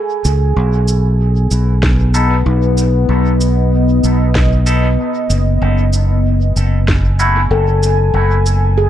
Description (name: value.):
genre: ambient dub.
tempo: 95 BPM.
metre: 4/4.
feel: swing 54% on 16ths.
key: unclear.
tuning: A4 = 442 Hz.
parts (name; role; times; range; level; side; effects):
deep dark ambient pad; sustained chords; 0.0-8.9 s; B3 to G#5; -19 LUFS; left 1 dB; chorus, built-in reverb.
handpan; arpeggios; 0.0-8.9 s; D#4 to A4; -22 LUFS; left 2 dB; dub echo.
fingered electric bass; bass; 0.2-8.9 s; F#1 to C#2; -12 LUFS; equal; none.
electronic shaker and snare drum; drums; 0.2-8.6 s; none; -23 LUFS; right 1 dB; small room ambience, dub echo.
electronic kick drum; drums; 1.8-7.0 s; none; -17 LUFS; equal; small room ambience.
clean electric guitar; stabs; 2.1-7.4 s; A3 to A4; -22 LUFS; left 1 dB; phaser, low-pass filter, dub echo.
room: digital ambience.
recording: none.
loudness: -11 LUFS.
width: side -11 dB against mid.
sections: 0.0-8.9 A section.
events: none.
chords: 0.0 N.C.; 0.6 B; 5.6 F#m.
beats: | 0.56 1.20 1.83 2.46 | 3.09 3.72 4.35 4.99 | 5.62 6.25 6.88 7.51 | 8.14 8.78.